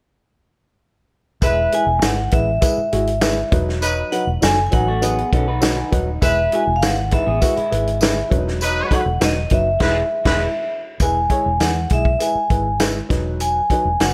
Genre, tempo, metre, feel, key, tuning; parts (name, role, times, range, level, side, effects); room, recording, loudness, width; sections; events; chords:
uptempo 1960s-style soul; 100 BPM; 4/4; straight; E major; A4 = 439 Hz
vibraphone with medium hard mallets; melody; 1.4-14.1 s; D#5 to G#5; -23 LUFS; equal
clear horn section; second line; 1.4-10.4 s; F#3 to B4; -27 LUFS; equal
dark upright piano; accompaniment; 1.4-14.1 s; F#3 to B5; -27 LUFS; equal
vintage muted fingered electric bass; bass; 1.4-14.1 s; D#1 to E2; -25 LUFS; equal
vintage drum kit; drums; 1.4-14.1 s; crash cymbal, hi-hat, kick drum, snare drum; -22 LUFS; equal
tambourine; percussion; 1.4-14.1 s; -32 LUFS; equal
electric guitar through a small old amp; riff; 4.7-10.5 s; F#3 to B4; -30 LUFS; equal
light reverb, small room ambience; -18 LUFS; mono
1.4-11.0 A section; 11.0-14.1 B section
upright piano fill 5.3-6.2; band accent 9.8-11.0
1.4 E; 3.5 B/E; 6.2 E; 8.3 B/E; 9.8 E; 13.1 B/E